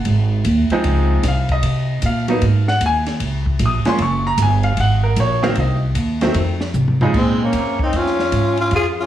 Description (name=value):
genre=jazz, small-group swing and bop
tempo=152 BPM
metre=4/4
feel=swing 65% on 8ths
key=Bb minor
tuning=A4 = 440 Hz
part: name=upright bass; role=bass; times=0.0-9.1 s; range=Gb1 to C3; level=-18 LUFS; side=right 1 dB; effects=none
part: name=compact cocktail drum kit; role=drums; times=0.1-8.8 s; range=crash cymbal, hi-hat, kick drum, ride cymbal, snare drum, toms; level=-25 LUFS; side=left 1 dB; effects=none
part: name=bright grand piano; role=accompaniment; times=0.7-7.1 s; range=Db3 to Eb6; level=-20 LUFS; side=equal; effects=none
part: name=growling tenor saxophone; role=melody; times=7.2-9.1 s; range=C4 to Ab4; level=-19 LUFS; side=left 2 dB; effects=tape echo
part: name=breathy trumpet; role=second line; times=7.2-9.1 s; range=Ab3 to F4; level=-22 LUFS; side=right 1 dB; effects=tape echo
room=moderate plate reverb, RT60 1.0 s, studio reverb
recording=dreamy mix soaked in reverb, cassette tape, small room ambience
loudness=-15 LUFS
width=side -12 dB against mid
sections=0.0-7.1 A section; 7.1-9.1 B section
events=drum fill 6.7-7.1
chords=0.1 Ab; 0.8 Dbmaj7; 2.4 Ab5; 3.2 Db6; 4.0 Gb; 5.6 Cdim; 6.4 F5; 7.1 Bbm7